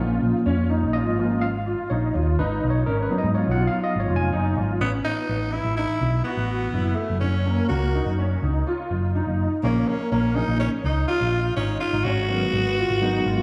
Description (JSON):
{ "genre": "progressive instrumental, progressive", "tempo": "124 BPM", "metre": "5/4", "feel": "straight", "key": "unclear", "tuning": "A4 = 441 Hz", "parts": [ { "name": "overdriven tine electric piano", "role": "accompaniment", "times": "0.0-4.8, 9.6-13.4 s", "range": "Db3 to Ab5", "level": "-28 LUFS", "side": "equal", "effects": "fast tremolo" }, { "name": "warm concert grand piano", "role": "arpeggios", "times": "0.0-13.4 s", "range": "Bb3 to Gb4", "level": "-30 LUFS", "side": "equal", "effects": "ensemble chorus, analog delay" }, { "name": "picked electric bass", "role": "bass", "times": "0.0-13.4 s", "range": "F1 to Ab2", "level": "-26 LUFS", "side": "equal", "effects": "none" }, { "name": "growling tenor saxophone", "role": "melody", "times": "4.8-13.4 s", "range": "A3 to Gb4", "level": "-28 LUFS", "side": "equal", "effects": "analog delay" } ], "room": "moderate lush hall reverb, RT60 2.2 s", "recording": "dreamy mix soaked in reverb, studio reverb", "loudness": "-23 LUFS", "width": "mono", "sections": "0.0-4.8 A section; 4.8-13.4 B section", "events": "tine electric piano solo 0.0-4.8", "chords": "0.0 Bbm; 2.4 Db7sus4/Ab; 4.8 Asus2; 7.2 Gb; 9.6 Bbm; 12.0 Db7sus4/Ab", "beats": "0.46 0.95 1.43 1.91 | 2.39 2.88 3.36 3.84 4.32 | 4.80 5.29 5.77 6.25 6.74 | 7.22 7.70 8.18 8.67 9.15 | 9.63 10.12 10.60 11.08 11.57 | 12.05 12.53 13.02" }